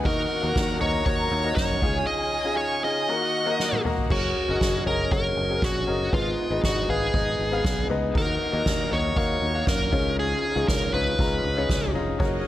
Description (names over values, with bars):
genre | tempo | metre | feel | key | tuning
piano-driven pop | 118 BPM | 4/4 | straight | unclear | A4 = 440 Hz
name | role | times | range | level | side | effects
warm studio violin section | second line | 0.0-4.1, 12.2-12.5 s | Eb4 to Bb5 | -31 LUFS | equal | none
clear baby grand piano | accompaniment | 0.0-12.5 s | Ab2 to Bb5 | -28 LUFS | left 3 dB | none
tonewheel organ | sustained chords | 0.0-12.5 s | Db3 to Bb4 | -37 LUFS | right 1 dB | overdrive, chorus vibrato, slow rotary speaker
soft-mallet drum kit | drums | 0.0-12.3 s | crash cymbal, kick drum, ride cymbal, snare drum, toms | -27 LUFS | equal | none
dark smooth lead guitar | melody | 0.1-11.9 s | F4 to Eb5 | -27 LUFS | right 1 dB | overdrive
fingered electric bass | bass | 0.1-12.4 s | F1 to Gb2 | -29 LUFS | equal | none
room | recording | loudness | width
light reverb, small room ambience | none | -22 LUFS | side -13 dB against mid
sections
0.0-4.1 A section; 4.1-12.5 A section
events
drum fill 3.6-4.1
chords
0.1 Ebm; 1.8 Dbadd9; 3.1 Ebm; 4.1 Gbadd9; 6.1 Abm; 8.2 Ebm; 9.9 Dbadd9